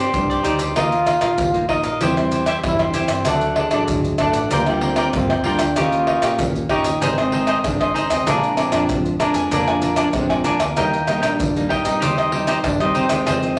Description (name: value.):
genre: samba and choro.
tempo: 96 BPM.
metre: 4/4.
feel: straight.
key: Eb major.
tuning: A4 = 440 Hz.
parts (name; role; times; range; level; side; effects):
breathy trombone; melody; 0.0-13.6 s; Ab3 to F4; -26 LUFS; equal; none.
cavaquinho; accompaniment; 0.0-13.6 s; D4 to Ab5; -24 LUFS; equal; none.
nylon-string guitar; accompaniment; 0.0-13.6 s; F2 to D5; -27 LUFS; equal; none.
woody fretless electric bass; bass; 0.0-13.6 s; Ab1 to G2; -32 LUFS; equal; none.
maracas, surdo, pandeiro and tamborim; percussion; 0.1-13.6 s; none; -25 LUFS; equal; none.
room: wet large studio reverb, RT60 0.8 s.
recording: none.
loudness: -19 LUFS.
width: mono.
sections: 0.8-13.6 A section.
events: none.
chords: 0.0 Cmadd9; 0.8 Ebsus2; 2.0 C/E; 3.3 D; 4.5 Gm7/D; 5.8 Eb7; 7.0 Ab; 8.3 Bb7; 10.8 Eb; 12.0 Cm/Eb.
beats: 0.14 | 0.77 1.39 2.02 2.64 | 3.27 3.89 4.51 5.14 | 5.77 6.39 7.02 7.64 | 8.27 8.89 9.52 10.14 | 10.77 11.40 12.02 12.65 | 13.28.